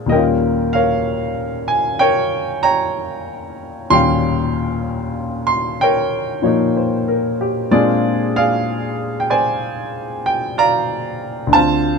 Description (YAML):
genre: solo jazz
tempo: 63 BPM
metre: 4/4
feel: swing 66% on 8ths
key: unclear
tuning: A4 = 440 Hz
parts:
  - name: warm baby grand piano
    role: solo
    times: 0.0-12.0 s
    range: D2 to C6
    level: -16 LUFS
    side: equal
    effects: none
room: light reverb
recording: close, detailed microphones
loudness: -15 LUFS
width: side -5 dB against mid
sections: 0.0-12.0 A section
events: none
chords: 0.1 Eb13; 7.7 Bb9